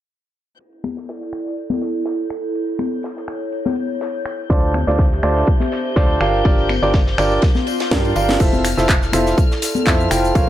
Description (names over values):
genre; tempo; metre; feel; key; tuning
piano house; 123 BPM; 4/4; swing 54% on 16ths; F major; A4 = 439 Hz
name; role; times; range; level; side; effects
dark chamber string section; sustained chords; 0.6-10.5 s; F6 to G6; -32 LUFS; left 8 dB; sidechain pumping
modern studio drum kit; drums; 0.6-10.5 s; ride cymbal, snare drum; -34 LUFS; equal; high-pass filter on cymbals, high-pass filter on snare, high-pass filter on room
tambourine and congas; percussion; 0.6-10.5 s; none; -25 LUFS; left 5 dB; none
warbly tape-like pad; texture; 0.6-10.5 s; E4 to F5; -26 LUFS; right 1 dB; chorus, built-in reverb, sidechain pumping
house drum kit; drums; 0.8-10.5 s; cabasa, crash cymbal, finger snaps, handclaps, hi-hat, snare drum; -23 LUFS; equal; none
bright concert grand piano; riff; 4.5-10.5 s; D4 to G5; -19 LUFS; right 1 dB; sidechain pumping, low-pass filter, digital delay
organ-like FM bass; bass; 4.5-10.5 s; F1 to G2; -22 LUFS; equal; sidechain pumping
electronic kick drum; drums; 4.5-10.5 s; none; -16 LUFS; equal; none
swell; sound effects; 7.6-8.4 s; none; -27 LUFS; left 2 dB; none
room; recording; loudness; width
light reverb; low-pass filter; -15 LUFS; side -12 dB against mid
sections
0.6-8.4 A section; 8.4-10.5 B section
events
filter sweep 0.6-8.4; swell 7.6-8.4; drum fill 7.9-8.4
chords
0.6 A7sus4/E; 4.5 Dm7; 6.2 Gm7; 8.4 Fmaj7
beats
| 0.60 1.08 1.57 2.06 | 2.55 3.04 3.52 4.01 | 4.50 4.99 5.47 5.96 | 6.45 6.94 7.43 7.91 | 8.40 8.89 9.38 9.87 | 10.35